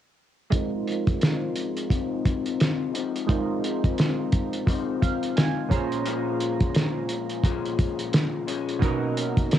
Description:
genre	indie pop, bedroom pop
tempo	87 BPM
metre	4/4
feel	swing 60% on 16ths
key	Ab major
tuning	A4 = 439 Hz
part	chorused retro synth keys	accompaniment	0.5-9.6 s	Bb2 to Bb5	-30 LUFS	right 8 dB	cassette tape, low-pass filter
part	electric guitar through a small old amp	accompaniment	0.5-9.6 s	Ab2 to Eb4	-29 LUFS	left 9 dB	wide subtle chorus, vibrato effect, low-pass filter, cassette tape
part	cloth-damped thuddy drum kit	drums	0.5-9.6 s	hi-hat, kick drum, snare drum	-24 LUFS	equal	cassette tape
room	moderate studio reverb, RT60 0.6 s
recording	home recording on cassette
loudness	-23 LUFS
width	side -11 dB against mid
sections	0.5-9.6 A section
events	filter sweep 0.5-9.6; synth keys fill 4.7-6.1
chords	0.5 Ab6; 5.7 Bbm7; 8.8 Bmaj7

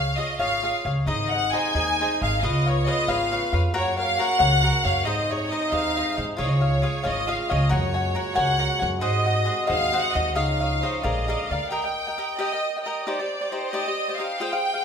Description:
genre	mexican folk, mariachi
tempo	90 BPM (dotted quarters)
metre	6/8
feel	straight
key	Db major, Eb major from 11.7 s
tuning	A4 = 439 Hz
part	clear studio violin section	melody	0.0-14.8 s	C5 to Ab5	-25 LUFS	equal	none
part	cavaquinho	accompaniment	0.0-14.8 s	Eb4 to Ab5	-27 LUFS	left 2 dB	none
part	upright bass	bass	0.0-11.6 s	Ab1 to Ab2	-25 LUFS	right 1 dB	none
part	mellow French horn section	sustained chords	1.1-11.7 s	Bb2 to Gb4	-32 LUFS	right 2 dB	none
room	moderate recital hall reverb, RT60 1.6 s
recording	minimal, uncompressed stereo recording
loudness	-21 LUFS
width	side -7 dB against mid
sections	0.0-11.7 A section; 11.7-14.8 B section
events	none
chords	0.0 Db; 1.1 Ab; 2.4 Db7; 3.7 Gb; 5.1 Ab; 6.4 Db; 7.7 Gbadd9; 9.0 Ab7; 10.4 Dbadd9; 11.0 Bb7; 11.7 Eb; 13.1 Cmadd9

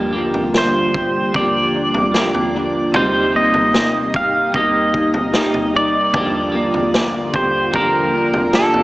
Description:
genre	dream pop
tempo	75 BPM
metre	4/4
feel	straight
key	G minor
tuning	A4 = 440 Hz
part	semi-hollow electric guitar	accompaniment	0.0-8.8 s	G2 to G4	-23 LUFS	right 1 dB	tremolo, lush chorus, shimmer reverb
part	warbly tape-like pad	sustained chords	0.0-8.8 s	C3 to G4	-23 LUFS	equal	chorus, built-in reverb, shimmer reverb
part	mellow electric guitar	arpeggios	0.0-8.8 s	G2 to G4	-22 LUFS	left 1 dB	ensemble chorus, analog delay, shimmer reverb
part	raw garage drum kit	drums	0.3-8.8 s	kick drum, snare drum, toms	-22 LUFS	equal	analog delay
part	pedal steel guitar	melody	0.6-8.8 s	A4 to F5	-18 LUFS	right 1 dB	analog delay, shimmer reverb
room	wet plate reverb, RT60 2.8 s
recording	echo-heavy mix, small speaker sound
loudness	-14 LUFS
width	side -18 dB against mid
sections	0.0-8.8 A section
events	none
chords	0.0 Gm7; 2.9 Cm7; 6.1 Gm7

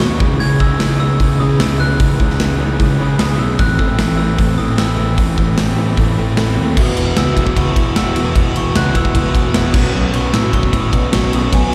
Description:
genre	indie rock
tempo	151 BPM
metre	4/4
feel	straight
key	E major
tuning	A4 = 440 Hz
part	glockenspiel with hard plastic mallets	melody	0.0-11.7 s	G#5 to G#6	-27 LUFS	equal	slapback echo
part	crunchy overdriven guitar	riff	0.0-11.7 s	E3 to F#4	-24 LUFS	equal	slapback echo
part	electric guitar through a small old amp	riff	0.0-11.7 s	E3 to F#4	-27 LUFS	equal	ensemble chorus, slapback echo
part	fuzz picked electric bass	bass	0.0-11.7 s	E1 to C#3	-19 LUFS	equal	overdrive
part	big rock drum kit	drums	0.0-11.6 s	crash cymbal, hi-hat, kick drum, ride cymbal, snare drum	-19 LUFS	equal	none
room	small room ambience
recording	live gig heard through the venue's PA, recital hall reverb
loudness	-15 LUFS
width	mono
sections	0.0-6.8 A section; 6.8-11.7 B section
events	glockenspiel solo 6.8-11.7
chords	0.2 C#madd9; 3.6 Am; 6.8 Esus2; 9.7 Bsus2

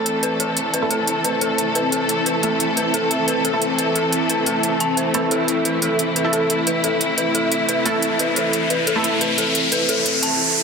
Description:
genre	dark technical drum and bass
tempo	177 BPM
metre	4/4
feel	straight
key	A minor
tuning	A4 = 441 Hz
part	warm studio string section	sustained chords	0.0-10.4 s	E3 to A4	-21 LUFS	left 1 dB	none
part	dark detuned synth bell	arpeggios	0.0-10.3 s	A4 to A5	-25 LUFS	left 2 dB	chorus, phaser, digital delay
part	ethereal airy pad	texture	0.0-10.4 s	C4 to E5	-25 LUFS	equal	ensemble chorus, built-in reverb, tremolo
part	electronic hi-hat	drums	0.1-10.3 s	none	-22 LUFS	right 1 dB	none
part	orchestra-hit-like synth stab	stabs	0.8-10.4 s	A3 to A4	-26 LUFS	right 3 dB	built-in reverb, cassette tape, digital delay
part	riser	sound effects	7.3-10.6 s	none	-22 LUFS	left 2 dB	none
room	moderate lush hall reverb, RT60 1.8 s, digital ambience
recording	dense, heavily limited modern master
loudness	-17 LUFS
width	side -5 dB against mid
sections	0.0-10.6 A section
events	build-up 0.0-10.6; filter sweep on synth stab 0.0-10.6; riser 7.3-10.6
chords	0.0 Am

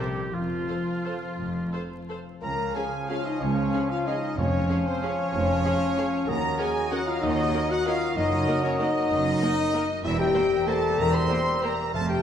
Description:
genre	classical, orchestral ballroom waltz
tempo	163-206 BPM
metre	3/4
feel	rubato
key	Db major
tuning	A4 = 438 Hz
part	rich studio violin section	melody	0.0-12.2 s	C5 to C6	-36 LUFS	left 3 dB	none
part	mellow clarinet	second line	0.0-12.2 s	F4 to Db5	-40 LUFS	left 2 dB	none
part	small flute group	second line	0.0-12.2 s	F4 to Bb5	-38 LUFS	left 2 dB	none
part	warm oboe	second line	0.0-12.2 s	F4 to F5	-37 LUFS	right 3 dB	none
part	warm studio violin section	second line	0.0-11.7 s	F4 to G5	-42 LUFS	left 2 dB	none
part	rich studio viola section	accompaniment	0.0-11.7 s	Bb3 to C5	-37 LUFS	right 1 dB	none
part	mellow French horn section	sustained chords	0.0-12.2 s	F3 to C5	-28 LUFS	left 3 dB	none
part	concert harp	arpeggios	0.0-12.2 s	E2 to C6	-35 LUFS	left 4 dB	none
part	rich studio cello section	bass	0.0-12.2 s	Db2 to C3	-33 LUFS	right 2 dB	none
part	rich studio double bass section	bass	0.0-12.2 s	E1 to Eb2	-32 LUFS	right 2 dB	none
part	clear bassoon	accompaniment	2.4-12.2 s	F3 to A3	-33 LUFS	right 4 dB	none
part	bright trumpet section	stabs	2.4-12.2 s	C5 to C6	-31 LUFS	right 1 dB	none
part	timpani	percussion	4.4-4.8, 11.9-12.2 s	F2	-34 LUFS	equal	none
room	wet scoring stage reverb, RT60 1.5 s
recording	minimal, uncompressed stereo recording, vinyl crackle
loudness	-23 LUFS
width	side -9 dB against mid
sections	0.0-2.4 A section; 2.4-12.2 B section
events	none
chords	0.0 C7; 0.3 F; 2.4 Db; 4.4 Db/F; 6.3 Ebm7; 8.2 Ebm/Gb; 10.0 C7/E

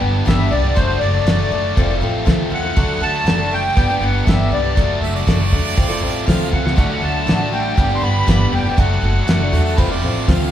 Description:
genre	folk rock and heartland rock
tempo	120 BPM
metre	4/4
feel	straight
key	D mixolydian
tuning	A4 = 440 Hz
part	picked acoustic archtop guitar	accompaniment	0.0-10.5 s	G2 to A4	-23 LUFS	left 3 dB	none
part	biting overdriven guitar	riff	0.0-10.5 s	F2 to G4	-24 LUFS	right 1 dB	none
part	upright bass	bass	0.0-10.5 s	F1 to E2	-20 LUFS	equal	none
part	accordion	melody	0.3-9.7 s	C5 to C6	-22 LUFS	left 1 dB	light tremolo tuning
part	cloth-damped thuddy drum kit	drums	0.3-10.4 s	crash cymbal, hi-hat, kick drum, snare drum	-18 LUFS	equal	none
part	bright harmonica	second line	5.0-6.5, 9.5-10.5 s	F#4 to F5	-26 LUFS	right 6 dB	none
part	tonewheel organ	sustained chords	6.8-10.5 s	C4 to B4	-33 LUFS	right 1 dB	none
room	moderate recital hall reverb, RT60 1.4 s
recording	recorded in a church or concert hall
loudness	-14 LUFS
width	side -11 dB against mid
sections	0.0-10.5 A section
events	drum fill 6.5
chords	0.0 G; 0.8 D/F#; 1.8 F; 2.8 D; 3.8 G; 4.8 D/F#; 5.8 F; 6.8 D; 7.8 G; 8.8 D/F#; 9.8 F

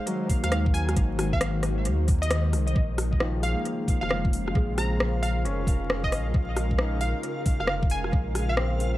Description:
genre	future garage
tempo	134 BPM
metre	4/4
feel	swing 64% on 16ths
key	Bb minor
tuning	A4 = 441 Hz
part	glassy wavetable pluck	melody	0.0-8.7 s	Eb5 to Bb5	-34 LUFS	equal	chorus, tape echo
part	felt-muted upright piano	accompaniment	0.0-9.0 s	Eb3 to Eb4	-34 LUFS	left 2 dB	sidechain pumping, dub echo
part	ethereal airy pad	sustained chords	0.0-9.0 s	Db3 to C5	-32 LUFS	equal	ensemble chorus, built-in reverb, sidechain pumping
part	garage drum kit	drums	0.1-8.9 s	hi-hat, rim click	-30 LUFS	equal	tape echo
part	electronic kick drum	drums	0.3-8.2 s	none	-24 LUFS	equal	none
part	warm sub bass	bass	0.4-9.0 s	F1 to Eb2	-27 LUFS	equal	tube saturation
part	backwards swelling texture	texture	3.7-9.0 s	F5	-40 LUFS	right 2 dB	built-in reverb
room	little or no reverb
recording	echo-heavy mix, vinyl crackle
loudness	-23 LUFS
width	side -15 dB against mid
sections	0.0-2.8 A section; 2.8-9.0 A section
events	kick drops out 2.3-2.8; band accent 2.3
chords	0.0 Ab7; 2.8 Bbm7

